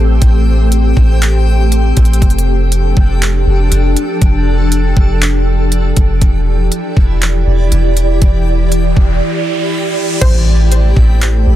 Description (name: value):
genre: hip hop, atmospheric cloud-rap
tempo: 120 BPM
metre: 4/4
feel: half-time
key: A minor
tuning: A4 = 440 Hz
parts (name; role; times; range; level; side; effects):
- ethereal airy pad; sustained chords; 0.0-11.6 s; E3 to D5; -17 LUFS; equal; ensemble chorus, built-in reverb, sidechain pumping
- soft 808-style bass; bass; 0.0-11.6 s; E1 to A1; -11 LUFS; equal; none
- backwards swelling texture; texture; 0.0-11.6 s; C4 to B5; -25 LUFS; left 1 dB; built-in reverb
- trap drum kit; drums; 0.2-11.3 s; crash cymbal, handclaps, hi-hat, kick drum; -12 LUFS; equal; none
- riser and impact; sound effects; 8.7-11.6 s; none; -23 LUFS; right 1 dB; none
- warbly dusty pluck; melody; 10.2-11.6 s; C5; -24 LUFS; equal; chorus, ping-pong delay
room: little or no reverb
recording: dense, heavily limited modern master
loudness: -9 LUFS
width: side -13 dB against mid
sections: 0.0-10.2 A section; 10.2-11.6 B section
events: riser 8.7-10.2; break 9.2-10.2; impact 10.2-11.6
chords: 0.0 Am7; 2.2 F69; 6.2 Em7; 10.2 Am9